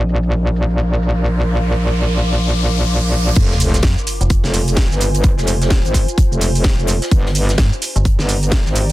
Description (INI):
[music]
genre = bass house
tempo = 128 BPM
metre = 4/4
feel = swing 60% on 16ths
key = F dorian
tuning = A4 = 440 Hz
[part]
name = metallic wobble bass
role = bass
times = 0.0-8.9 s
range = F1 to Bb1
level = -16 LUFS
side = equal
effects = chorus, tube saturation, sidechain pumping
[part]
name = riser and sub drop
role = sound effects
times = 1.0-5.2 s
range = none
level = -24 LUFS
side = equal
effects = none
[part]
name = ethereal airy pad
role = texture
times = 0.0-8.9 s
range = C4 to D6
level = -26 LUFS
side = right 1 dB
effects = ensemble chorus, built-in reverb, sidechain pumping
[part]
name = house drum kit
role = drums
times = 0.1-8.9 s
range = crash cymbal, hi-hat, shaker, snare drum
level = -22 LUFS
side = right 1 dB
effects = low-pass filter on perc, low-pass filter on hats, low-pass filter on cymbals, low-pass filter on snare, low-pass filter on room
[part]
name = electronic kick drum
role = drums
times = 3.4-8.6 s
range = none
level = -14 LUFS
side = equal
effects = none
[part]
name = modern studio drum kit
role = drums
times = 3.4-8.9 s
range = hi-hat, snare drum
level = -31 LUFS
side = left 3 dB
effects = sidechain pumping on hats, high-pass filter on hats, high-pass filter on snare, high-pass filter on room
[part]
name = metallic FM bass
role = bass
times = 3.8-4.4, 7.6-8.2 s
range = F1 to G2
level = -17 LUFS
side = equal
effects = overdrive, sidechain pumping
[sound]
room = little or no reverb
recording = dense, heavily limited modern master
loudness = -13 LUFS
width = side -16 dB against mid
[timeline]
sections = 0.0-3.4 A section; 3.4-8.9 B section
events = riser 1.0-3.4; drop 3.4-8.9; impact 3.4-5.2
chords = 0.0 Bb; 3.4 Fm; 7.1 Gm